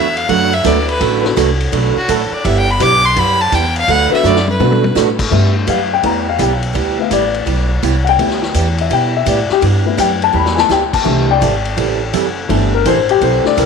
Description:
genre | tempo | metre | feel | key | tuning
country, western swing | 167 BPM | 4/4 | swing 66% on 8ths | G major | A4 = 440 Hz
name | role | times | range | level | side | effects
clear fiddle | melody | 0.0-4.9 s | F#4 to D6 | -15 LUFS | equal | none
picked steel-string acoustic guitar | accompaniment | 0.0-13.7 s | C3 to B4 | -18 LUFS | right 12 dB | none
upright bass | bass | 0.0-13.7 s | F#1 to B2 | -17 LUFS | right 1 dB | none
vintage drum kit | drums | 0.2-13.7 s | crash cymbal, hi-hat, kick drum, ride cymbal, snare drum, toms | -21 LUFS | left 5 dB | none
dark upright piano | accompaniment | 0.6-13.7 s | A3 to B5 | -16 LUFS | left 11 dB | none
room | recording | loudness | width
moderate echo chamber reverb, RT60 2.0 s, small room ambience | 1960s-style stereo with parts hard left and right | -11 LUFS | side -5 dB against mid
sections
0.0-5.3 A section; 5.3-13.7 A section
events
fiddle solo 0.0-5.3; drum fill 4.2-5.0, 10.3-10.7; upright piano solo 5.3-13.7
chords
0.0 D6; 2.4 G6; 3.9 D6; 5.3 G6; 11.1 C6

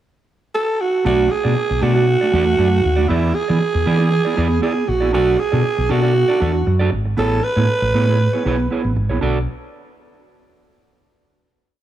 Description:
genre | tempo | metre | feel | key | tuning
disco | 118 BPM | 4/4 | straight | B dorian | A4 = 441 Hz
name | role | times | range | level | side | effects
growling alto saxophone | melody | 0.5-9.0 s | E4 to B4 | -18 LUFS | right 3 dB | none
mellow electric guitar | accompaniment | 1.0-9.4 s | A3 to D5 | -22 LUFS | right 5 dB | none
deep dub fingered electric bass | bass | 1.1-9.5 s | G#1 to E3 | -18 LUFS | equal | none
room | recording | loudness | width
small room ambience | studio ambience | -15 LUFS | side -12 dB against mid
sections
0.0-1.1 pickup bar; 1.1-9.2 verse; 9.2-11.3 final chord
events
none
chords
0.0 N.C.; 1.1 Bm7; 3.1 E7; 5.1 Bm7; 7.2 Amaj9; 9.2 Bm7

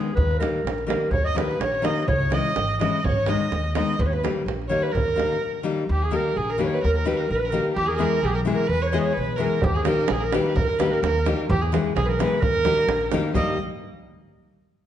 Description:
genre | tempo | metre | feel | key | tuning
balkan folk, Balkan wedding band | 128 BPM | 2/4 | straight | Eb phrygian dominant | A4 = 435 Hz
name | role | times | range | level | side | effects
mellow clarinet | melody | 0.0-13.6 s | G4 to Eb5 | -26 LUFS | right 1 dB | none
nylon-string guitar | accompaniment | 0.0-13.6 s | Eb3 to G#4 | -26 LUFS | left 4 dB | none
upright bass | bass | 0.2-13.6 s | Ab1 to E2 | -26 LUFS | equal | none
davul | percussion | 0.2-5.4, 9.6-13.6 s | none | -27 LUFS | right 3 dB | none
rich violin | second line | 1.1-13.6 s | G4 to Eb5 | -30 LUFS | right 3 dB | none
room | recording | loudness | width
moderate recital hall reverb, RT60 1.5 s | nothing above 10.5 kHz | -20 LUFS | side -10 dB against mid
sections
0.0-5.9 A section; 5.9-13.3 B section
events
speeding up 0.0-14.3; break 5.4-5.9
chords
0.2 Eb; 2.1 Dbm; 3.0 Abm; 4.0 Eb; 7.8 E; 9.6 Eb; 11.5 E; 12.4 Eb

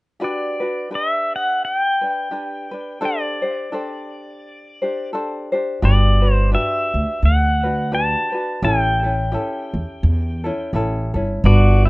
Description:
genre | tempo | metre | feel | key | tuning
Hawaiian | 86 BPM | 4/4 | swing 58% on 8ths | G major | A4 = 442 Hz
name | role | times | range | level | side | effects
pedal steel guitar | melody | 0.2-11.9 s | F#4 to A5 | -22 LUFS | equal | analog delay
tenor ukulele | accompaniment | 0.2-11.9 s | C#4 to C5 | -25 LUFS | left 1 dB | none
upright bass | bass | 5.8-11.9 s | G1 to E2 | -16 LUFS | equal | none
room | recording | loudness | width
little or no reverb | rough home demo mix, nothing above 10.6 kHz | -17 LUFS | side -22 dB against mid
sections
0.2-11.4 A section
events
none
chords
0.2 Gmaj7; 3.0 D7sus4; 5.8 Gmaj7; 8.6 A7

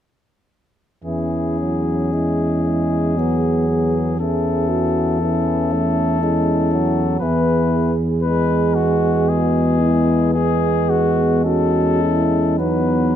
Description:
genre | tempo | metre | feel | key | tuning
classical, hymn-like piece for brass band | 58 BPM | 3/4 | uneven beats, rubato | E major | A4 = 440 Hz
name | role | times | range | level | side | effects
warm cornet | melody | 1.0-13.2 s | F#4 to B4 | -24 LUFS | left 10 dB | none
mellow French horn section | second line | 1.0-13.2 s | D#4 to G#4 | -23 LUFS | right 6 dB | none
clear euphonium | accompaniment | 1.0-13.2 s | E3 to A3 | -25 LUFS | right 3 dB | none
warm tuba | bass | 1.0-13.2 s | E2 | -20 LUFS | equal | none
mellow euphonium | accompaniment | 1.1-13.2 s | B3 to C#4 | -23 LUFS | left 4 dB | none
room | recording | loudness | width
light reverb | close, detailed microphones | -16 LUFS | side -10 dB against mid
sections
1.1-13.2 A section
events
none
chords
1.1 E; 4.2 F#m7/E; 7.2 E; 10.4 B7/E

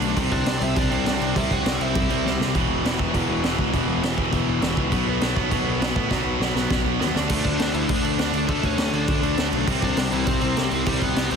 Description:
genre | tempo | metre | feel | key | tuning
punk rock | 202 BPM | 4/4 | straight | unclear | A4 = 439 Hz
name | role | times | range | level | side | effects
biting overdriven guitar | riff | 0.0-11.4 s | E2 to D4 | -26 LUFS | left 16 dB | none
distorted electric guitar | riff | 0.0-11.4 s | E2 to D4 | -26 LUFS | right 17 dB | overdrive
fuzz picked electric bass | bass | 0.0-11.4 s | E1 to A2 | -27 LUFS | right 1 dB | overdrive
raw garage drum kit | drums | 0.0-11.4 s | crash cymbal, kick drum, snare drum | -25 LUFS | right 1 dB | soft clipping on kick
biting overdriven guitar | melody | 0.3-2.4, 7.4-11.4 s | E3 to F#5 | -29 LUFS | left 1 dB | digital delay
room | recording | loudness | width
little or no reverb | dense, heavily limited modern master | -20 LUFS | side -6 dB against mid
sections
0.0-2.5 A section; 2.5-7.3 B section; 7.3-11.4 A section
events
drum fill 2.2, 6.1-7.3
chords
0.2 C; 2.5 E5; 4.9 B5; 7.1 D5; 9.7 C5

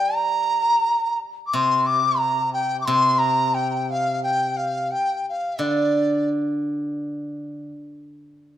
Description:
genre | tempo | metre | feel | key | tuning
chinese traditional, Chinese chamber ensemble | 88 BPM | 4/4 | rubato | unclear | A4 = 440 Hz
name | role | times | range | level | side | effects
mellow hollow dizi | melody | 0.0-6.3 s | D5 to D6 | -20 LUFS | equal | none
steel-string zither | accompaniment | 0.0-7.7 s | C3 to G3 | -25 LUFS | right 1 dB | none
room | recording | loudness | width
wet recital hall reverb, RT60 1.5 s | none | -19 LUFS | side -11 dB against mid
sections
0.0-8.6 A section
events
none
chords
none

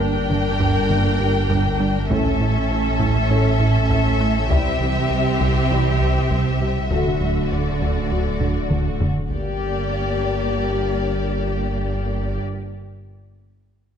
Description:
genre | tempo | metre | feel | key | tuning
cinematic, hybrid orchestral and electronic film score | 100 BPM | 4/4 | straight | G dorian | A4 = 437 Hz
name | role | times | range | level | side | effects
warm symphonic violin section | melody | 0.0-12.4 s | D5 to G5 | -28 LUFS | left 4 dB | none
rich symphonic violin section | second line | 0.0-12.4 s | F#4 to Bb4 | -27 LUFS | left 5 dB | none
dark studio viola section | accompaniment | 0.0-12.4 s | A3 to D4 | -29 LUFS | right 3 dB | none
thumb-piano-like synth pluck | arpeggios | 0.0-9.2 s | C3 to A4 | -30 LUFS | right 5 dB | none
rubbery square bass | riff | 0.0-9.2 s | C2 to A3 | -24 LUFS | right 2 dB | none
rich symphonic double bass section | bass | 0.0-12.4 s | G1 to D2 | -26 LUFS | right 3 dB | none
saturated sub bass | bass | 0.0-12.4 s | D1 to C2 | -28 LUFS | left 1 dB | none
warm symphonic cello section | bass | 0.0-12.4 s | G2 to D3 | -26 LUFS | right 3 dB | none
taiko ensemble | drums | 0.3-10.5 s | none | -27 LUFS | left 1 dB | none
warm French horn section | sustained chords | 0.9-12.4 s | G3 to G4 | -28 LUFS | left 4 dB | none
room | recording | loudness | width
moderate scoring stage reverb, RT60 1.6 s | nothing above 10.6 kHz | -18 LUFS | side -8 dB against mid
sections
0.0-9.3 A section; 9.3-11.7 B section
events
drum fill 8.4-9.3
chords
0.0 Gm; 2.1 A; 4.5 C; 6.9 D; 9.3 Gm

